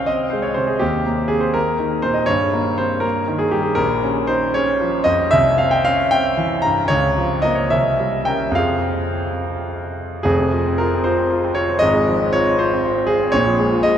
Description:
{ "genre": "classical, romantic character piece for solo piano", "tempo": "69-82 BPM (dotted quarters)", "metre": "6/8", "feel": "rubato", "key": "F minor from 3.8 s", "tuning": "A4 = 442 Hz", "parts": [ { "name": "bright concert grand piano", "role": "solo", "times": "0.0-14.0 s", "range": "F1 to Bb5", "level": "-16 LUFS", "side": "equal", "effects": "none" } ], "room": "wet cathedral reverb, RT60 6.8 s", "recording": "in a vast, echoing space", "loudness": "-16 LUFS", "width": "side -9 dB against mid", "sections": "0.0-10.2 A section; 10.2-14.0 B section", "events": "none", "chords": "0.0 Ab/C; 0.8 Eb; 2.3 Eb/G; 3.8 Bbmadd11; 5.3 C; 6.9 Bbm/Db; 7.7 C7b9; 8.6 Fm; 11.8 Fm/Ab; 13.3 Bbm7", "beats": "0.06 | 0.81 1.55 | 2.28 3.04 | 3.78 4.55 | 5.33 6.11 | 6.90 7.71 | 8.55 9.40 | 10.24 11.04 | 11.81 12.59 | 13.34" }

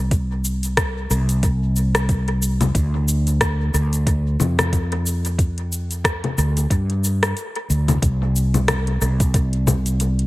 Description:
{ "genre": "sunset chillout", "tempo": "91 BPM", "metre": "4/4", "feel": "swing 57% on 16ths", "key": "unclear", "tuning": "A4 = 436 Hz", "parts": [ { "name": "fretless electric bass", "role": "bass", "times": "0.0-10.3 s", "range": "C2 to G2", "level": "-19 LUFS", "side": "equal", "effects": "lush chorus" }, { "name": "electronic kick drum", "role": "drums", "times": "0.1-9.8 s", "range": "none", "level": "-20 LUFS", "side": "equal", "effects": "none" }, { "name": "smooth R&B drum kit", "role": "drums", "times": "0.1-10.3 s", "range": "congas, hi-hat, rim click, shaker", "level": "-23 LUFS", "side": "left 2 dB", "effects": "dub echo" } ], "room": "little or no reverb", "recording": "echo-heavy mix", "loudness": "-18 LUFS", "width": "side -19 dB against mid", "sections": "0.0-8.0 A section; 8.0-10.3 B section", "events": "kick drops out 7.4-8.0", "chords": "none", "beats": "| 0.11 0.77 1.43 2.09 | 2.75 3.41 4.07 4.73 | 5.39 6.05 6.71 7.37 | 8.03 8.69 9.35 10.00" }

